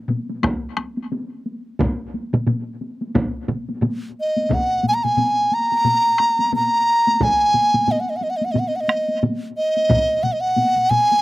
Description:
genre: japanese traditional, taiko drum ensemble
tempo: 89 BPM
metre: 4/4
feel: swing 60% on 16ths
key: unclear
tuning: A4 = 440 Hz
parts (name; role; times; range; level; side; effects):
- taiko ensemble; percussion; 0.1-11.2 s; none; -26 LUFS; left 1 dB; none
- taiko ensemble; percussion; 0.1-11.1 s; none; -26 LUFS; left 2 dB; none
- taiko ensemble; percussion; 0.4-10.1 s; none; -24 LUFS; equal; none
- solo taiko drums; percussion; 1.8-9.4 s; none; -24 LUFS; right 2 dB; none
- mellow hollow large dizi; melody; 4.2-11.2 s; Eb5 to Bb5; -17 LUFS; equal; none
room: little or no reverb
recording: recorded outdoors, with no room sound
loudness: -17 LUFS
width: side -18 dB against mid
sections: 0.0-4.5 A section; 4.5-11.2 B section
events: none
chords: none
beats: 0.43 1.11 | 1.79 2.47 3.15 3.83 | 4.51 5.19 5.86 6.54 | 7.21 7.88 8.56 9.23 | 9.90 10.57

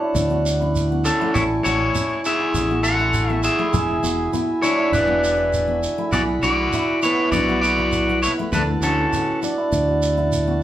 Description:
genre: highlife guitar band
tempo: 100 BPM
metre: 4/4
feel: straight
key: A major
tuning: A4 = 439 Hz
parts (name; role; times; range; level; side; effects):
- electric guitar at the edge of break-up; melody; 0.0-9.4 s; C#4 to A5; -21 LUFS; left 1 dB; none
- fingerpicked steel-string acoustic guitar; accompaniment; 0.0-10.6 s; C#3 to C#5; -31 LUFS; left 6 dB; none
- combo organ; sustained chords; 0.0-10.6 s; E5 to C#6; -35 LUFS; left 4 dB; none
- cimbalom; arpeggios; 0.0-10.6 s; B3 to A4; -22 LUFS; right 2 dB; none
- fingered electric bass; bass; 0.1-10.6 s; E1 to D2; -24 LUFS; equal; none
- shekere; percussion; 0.2-10.5 s; none; -28 LUFS; right 2 dB; none
room: wet large studio reverb, RT60 0.8 s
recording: band playing live in one room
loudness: -17 LUFS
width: side -12 dB against mid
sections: 0.0-10.6 A section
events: none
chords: 0.0 D; 1.4 Amaj7; 3.7 E7; 6.1 Bm; 8.5 D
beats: 0.16 0.76 | 1.35 1.95 2.55 3.15 | 3.75 4.34 4.94 5.54 | 6.14 6.74 7.33 7.93 | 8.53 9.13 9.73 10.33

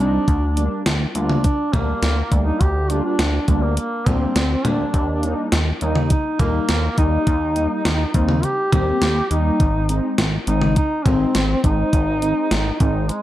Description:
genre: synth-pop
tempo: 103 BPM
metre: 4/4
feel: straight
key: Eb major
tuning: A4 = 440 Hz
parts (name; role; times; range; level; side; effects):
- warm duduk; melody; 0.0-13.2 s; Ab3 to G4; -22 LUFS; equal; analog delay
- mellow synth brass; accompaniment; 0.0-13.1 s; G3 to F4; -26 LUFS; left 1 dB; chorus, phaser
- chorused synth bass; bass; 0.0-13.1 s; Ab1 to Eb2; -21 LUFS; equal; none
- gated 80s digital drum machine; drums; 0.3-13.2 s; hi-hat, kick drum, snare drum, toms; -20 LUFS; equal; gated reverb, gated reverb snare
room: light reverb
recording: dark, warm production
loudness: -17 LUFS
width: side -14 dB against mid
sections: 0.0-13.2 A section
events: none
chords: 0.3 Gm/D; 4.9 Eb; 9.6 Ab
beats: | 0.28 0.86 1.44 2.03 | 2.61 3.19 3.77 4.36 | 4.94 5.52 6.10 6.69 | 7.27 7.85 8.43 9.02 | 9.60 10.18 10.76 11.35 | 11.93 12.51 13.09

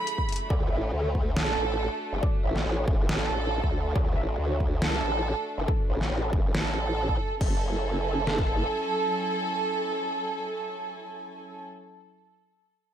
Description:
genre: heavy wobble dubstep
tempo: 139 BPM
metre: 4/4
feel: half-time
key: F# minor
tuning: A4 = 438 Hz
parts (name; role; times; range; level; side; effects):
- dark studio violin section; melody; 0.0-11.6 s; A4 to B5; -31 LUFS; right 3 dB; ping-pong delay
- warm chamber string section; sustained chords; 0.0-11.6 s; F#3 to G#5; -36 LUFS; right 1 dB; sidechain pumping
- dubstep drum kit; drums; 0.1-7.5 s; crash cymbal, hi-hat, snare drum; -31 LUFS; equal; none
- dubstep drum kit; drums; 0.2-8.5 s; kick drum, snare drum; -27 LUFS; equal; none
- formant-sweep wobble bass; bass; 0.5-8.7 s; F#1 to D2; -28 LUFS; equal; chorus, overdrive
room: light reverb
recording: none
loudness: -25 LUFS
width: side -10 dB against mid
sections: 0.0-7.4 A section; 7.4-10.9 B section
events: none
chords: 0.0 F#m7; 0.5 D; 7.4 F#m7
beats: 0.07 | 0.50 0.93 1.36 1.80 | 2.23 2.66 3.09 3.52 | 3.96 4.39 4.82 5.25 | 5.68 6.11 6.54 6.98 | 7.41 7.84 8.27 8.70 | 9.13 9.57 10.00 10.43

